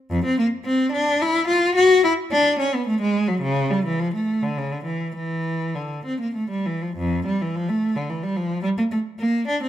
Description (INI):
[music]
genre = classical, baroque-style suite movement for unaccompanied cello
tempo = 96-110 BPM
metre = 3/4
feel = rubato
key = D minor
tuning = A4 = 440 Hz
[part]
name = clear cello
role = solo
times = 0.1-9.7 s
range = F2 to F#4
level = -20 LUFS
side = left 1 dB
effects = none
[sound]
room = moderate large studio reverb, RT60 1.2 s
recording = minimal, uncompressed stereo recording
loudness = -20 LUFS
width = side -11 dB against mid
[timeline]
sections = 0.0-7.0 A section; 7.0-9.7 A section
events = none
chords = none